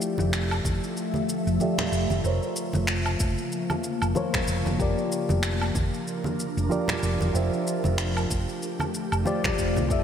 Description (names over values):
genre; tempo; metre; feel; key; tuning
sunset chillout; 94 BPM; 4/4; swing 58% on 16ths; unclear; A4 = 440 Hz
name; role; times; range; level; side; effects
flamenco guitar; accompaniment; 0.0-10.0 s; F3 to E5; -29 LUFS; moving between left 5 dB and right 5 dB; auto-pan, low-pass filter, digital delay
ethereal airy pad; sustained chords; 0.0-10.0 s; Db3 to E5; -30 LUFS; equal; ensemble chorus, built-in reverb, phaser
electronic shaker, finger snaps and woodblock; drums; 0.0-10.0 s; none; -32 LUFS; equal; gated reverb
hollow-body short-scale fingered electric bass; bass; 0.2-10.0 s; F1 to C2; -27 LUFS; equal; none
congas; percussion; 0.2-9.9 s; none; -34 LUFS; right 2 dB; none
electronic kick drum; drums; 0.6-10.0 s; none; -29 LUFS; equal; none
room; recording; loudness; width
moderate lush hall reverb, RT60 2.7 s; bright 1980s-style digital production; -24 LUFS; side -8 dB against mid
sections
0.0-10.0 A section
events
filter sweep on nylon-string guitar 0.0-10.0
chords
0.0 Fmaj13; 2.2 Bbmadd9/F; 4.8 Bb6/F; 7.3 Am7/F